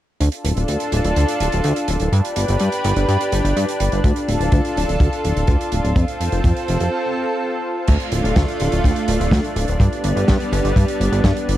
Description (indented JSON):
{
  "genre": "italo disco",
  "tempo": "125 BPM",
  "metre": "4/4",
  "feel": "straight",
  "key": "D dorian",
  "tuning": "A4 = 438 Hz",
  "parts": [
    { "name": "lush unison pad", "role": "sustained chords", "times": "0.2-11.6 s", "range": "G3 to B4", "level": "-21 LUFS", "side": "equal", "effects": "chorus" },
    { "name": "chorused synth bass", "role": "bass", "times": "0.2-11.6 s", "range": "D1 to G2", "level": "-19 LUFS", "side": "equal", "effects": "tube saturation" },
    { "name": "loose indie drum kit", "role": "drums", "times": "0.2-11.6 s", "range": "crash cymbal, hi-hat, snare drum", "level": "-26 LUFS", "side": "right 2 dB", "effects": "none" },
    { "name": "kick drum", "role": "drums", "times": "4.0-11.3 s", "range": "none", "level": "-18 LUFS", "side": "equal", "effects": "none" }
  ],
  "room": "little or no reverb",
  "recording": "dry, close 1970s-style studio recording, vinyl crackle",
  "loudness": "-16 LUFS",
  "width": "side -13 dB against mid",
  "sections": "0.2-7.9 A section; 7.9-11.6 B section",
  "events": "break 6.9-7.9",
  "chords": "0.2 Dm; 2.1 G; 4.0 Dm; 6.0 F; 7.9 Dm; 9.8 G"
}